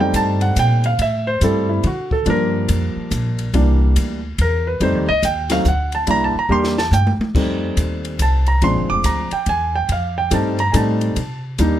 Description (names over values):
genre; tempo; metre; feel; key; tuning
jazz piano trio; 142 BPM; 3/4; swing 65% on 8ths; F major; A4 = 441 Hz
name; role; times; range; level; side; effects
warm concert grand piano; melody; 0.0-11.8 s; E3 to D6; -18 LUFS; right 1 dB; none
upright bass; bass; 0.0-11.8 s; F1 to D3; -19 LUFS; equal; none
compact cocktail drum kit; drums; 0.1-11.7 s; crash cymbal, hi-hat, kick drum, ride cymbal, snare drum, toms; -26 LUFS; left 1 dB; none
room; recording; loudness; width
little or no reverb; close, detailed microphones, lossy compression artefacts; -16 LUFS; side -11 dB against mid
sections
0.0-7.3 A section; 7.3-11.8 A section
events
grand piano solo 0.0-11.8; drum fill 6.5-7.3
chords
0.0 F9; 1.0 Am7; 1.8 D; 2.3 Gm7; 3.5 C9; 4.8 F9; 5.7 D; 6.1 C9; 7.3 F9; 8.6 Bb9; 9.9 F9; 11.2 Cm7